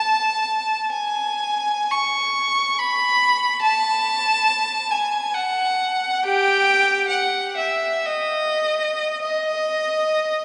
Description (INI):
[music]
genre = classical, free, expressive piece for unaccompanied violin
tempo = 46-75 BPM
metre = 3/4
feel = rubato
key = unclear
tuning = A4 = 441 Hz
[part]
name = rich violin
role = solo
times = 0.0-10.4 s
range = G4 to C#6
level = -21 LUFS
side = equal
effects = none
[sound]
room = wet cathedral reverb, RT60 4.9 s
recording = recorded in a church or concert hall, nothing above 10.3 kHz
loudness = -21 LUFS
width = mono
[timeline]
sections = 0.0-10.4 A section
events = none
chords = none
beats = 0.08 | 0.93 1.92 2.80 | 3.61 4.46 5.35 | 6.23 7.10 8.08 | 9.24